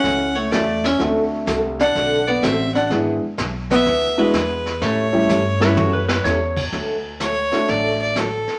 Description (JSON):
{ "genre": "country, western swing", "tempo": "126 BPM", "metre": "4/4", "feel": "swing 67% on 8ths", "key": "D major", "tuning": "A4 = 440 Hz", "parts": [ { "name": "rich fiddle", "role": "melody", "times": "0.0-8.6 s", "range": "A4 to F#5", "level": "-25 LUFS", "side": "equal", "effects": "none" }, { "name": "archtop guitar, miked and amplified", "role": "second line", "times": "0.0-6.2 s", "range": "G#3 to D4", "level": "-23 LUFS", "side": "equal", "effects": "none" }, { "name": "dark upright piano", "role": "accompaniment", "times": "0.0-8.1 s", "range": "G3 to A4", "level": "-24 LUFS", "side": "equal", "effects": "none" }, { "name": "picked steel-string acoustic guitar", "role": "accompaniment", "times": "0.0-8.3 s", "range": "C#3 to A4", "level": "-28 LUFS", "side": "equal", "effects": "none" }, { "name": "upright bass", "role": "bass", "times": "0.0-8.4 s", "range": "G#1 to A2", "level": "-29 LUFS", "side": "equal", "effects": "none" }, { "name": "vintage brush drum kit", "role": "drums", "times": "0.0-8.6 s", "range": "brushed snare drum, crash cymbal, hi-hat, kick drum, snare drum, toms", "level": "-29 LUFS", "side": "equal", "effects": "none" }, { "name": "clean lap steel guitar", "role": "second line", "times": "5.6-6.6 s", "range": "F#4 to C#5", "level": "-24 LUFS", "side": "equal", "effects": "none" } ], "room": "wet studio reverb, RT60 0.8 s", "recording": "none", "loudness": "-19 LUFS", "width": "mono", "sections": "0.0-6.7 A section; 6.7-8.6 B section", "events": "drum fill 5.3-6.2", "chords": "0.0 F#m7; 1.0 D7; 2.9 E7; 4.8 A7; 6.7 D", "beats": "0.04 0.52 | 0.99 1.47 1.95 2.43 | 2.90 3.38 3.86 4.34 | 4.81 5.29 5.77 6.25 | 6.72 7.20 7.68 8.16" }